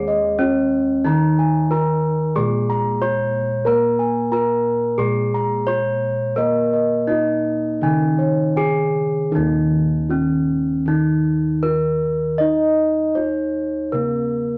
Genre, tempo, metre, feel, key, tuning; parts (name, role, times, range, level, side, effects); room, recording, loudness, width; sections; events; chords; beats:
Javanese gamelan; 78-92 BPM; 4/4; straight; Eb slendro; A4 = 440 Hz
gamelan-type bronze metallophone; melody; 0.0-14.6 s; Db4-40c to Eb5; -23 LUFS; equal
gamelan-type bronze metallophone; accompaniment; 0.0-14.6 s; Eb3 to Eb4; -24 LUFS; equal
gamelan-type bossed gongs; arpeggios; 0.0-9.0 s; Db5-40c to Db6-40c; -26 LUFS; equal
gamelan-type bossed gongs; bass; 0.0-14.6 s; Eb2 to Eb5; -29 LUFS; equal
wet club reverb, RT60 0.5 s; -19 LUFS; mono
0.0-9.3 A section; 9.3-14.6 B section
0.40 | 1.05 1.71 2.36 3.01 | 3.66 4.32 4.99 5.68 | 6.37 7.09 7.82 8.56 | 9.32 10.09 10.86 11.63 | 12.40 13.17 13.94